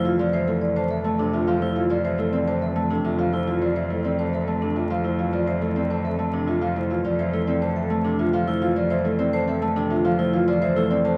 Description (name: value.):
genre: classical, minimalist pattern music.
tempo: 105 BPM.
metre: 3/4.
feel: straight.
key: F major.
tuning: A4 = 440 Hz.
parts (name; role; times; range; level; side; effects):
marimba with soft mallets; melody; 0.0-11.2 s; A4 to A5; -29 LUFS; equal; none.
Celtic harp; accompaniment; 0.0-11.2 s; C3 to C4; -27 LUFS; equal; none.
vibraphone with medium mallets; arpeggios; 0.0-11.2 s; D4 to C5; -29 LUFS; equal; none.
rich cello; bass; 0.0-11.2 s; F2; -33 LUFS; equal; none.
room: moderate large studio reverb, RT60 1.0 s.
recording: heard from further back in the room, vinyl crackle.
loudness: -23 LUFS.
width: mono.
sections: 0.0-11.2 A section.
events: none.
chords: 0.0 F6.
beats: 0.33 0.90 | 1.48 2.05 2.62 | 3.19 3.76 4.33 | 4.90 5.48 6.05 | 6.62 7.19 7.76 | 8.33 8.90 9.48 | 10.05 10.62.